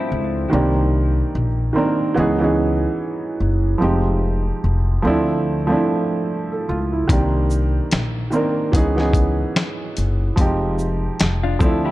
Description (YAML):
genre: lo-fi hip hop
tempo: 73 BPM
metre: 4/4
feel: swing 58% on 16ths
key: C minor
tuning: A4 = 439 Hz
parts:
  - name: semi-hollow electric guitar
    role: second line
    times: 0.0-0.5, 11.4-11.9 s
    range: C4 to A4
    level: -26 LUFS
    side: left 5 dB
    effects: tape echo
  - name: dark upright piano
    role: accompaniment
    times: 0.0-11.9 s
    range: Eb3 to Bb4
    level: -20 LUFS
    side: right 2 dB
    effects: none
  - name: upright bass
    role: bass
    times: 0.1-11.9 s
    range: F1 to D2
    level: -20 LUFS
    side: left 1 dB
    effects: none
  - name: lo-fi sampler-style drum kit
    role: drums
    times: 7.1-11.8 s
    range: finger snaps, hi-hat, kick drum, shaker, snare drum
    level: -19 LUFS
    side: left 1 dB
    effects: none
room: light reverb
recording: dark, warm production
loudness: -17 LUFS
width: side -16 dB against mid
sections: 0.0-11.9 A section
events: none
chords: 0.0 Dm9; 0.5 Cm9; 2.2 Dbm9; 3.8 Fm9; 5.0 Dm9; 7.1 Cm9; 8.7 Dbm9; 10.4 Fm9